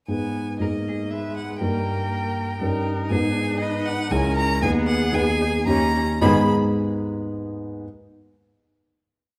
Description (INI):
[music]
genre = quick classical-period movement for piano quartet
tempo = 109-122 BPM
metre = 3/4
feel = straight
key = G# minor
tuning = A4 = 438 Hz
[part]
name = clear violin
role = melody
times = 0.1-6.5 s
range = D#5 to B5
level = -30 LUFS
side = equal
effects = none
[part]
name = dark concert grand piano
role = accompaniment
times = 0.1-7.8 s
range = C#2 to D#5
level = -25 LUFS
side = equal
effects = none
[part]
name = warm viola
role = accompaniment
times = 0.1-6.5 s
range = G#3 to G#4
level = -34 LUFS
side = equal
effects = none
[part]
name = clear cello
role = second line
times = 0.6-6.5 s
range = D#3 to B4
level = -32 LUFS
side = equal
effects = none
[sound]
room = wet recital hall reverb, RT60 1.6 s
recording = none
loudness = -23 LUFS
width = mono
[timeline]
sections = 0.1-6.2 A section; 6.2-7.8 final chord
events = none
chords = 0.1 G#m; 1.6 D#/G; 2.6 D#7/G; 3.1 G#m; 4.1 C#m; 4.6 G#m/D#; 5.7 D#7; 6.2 G#m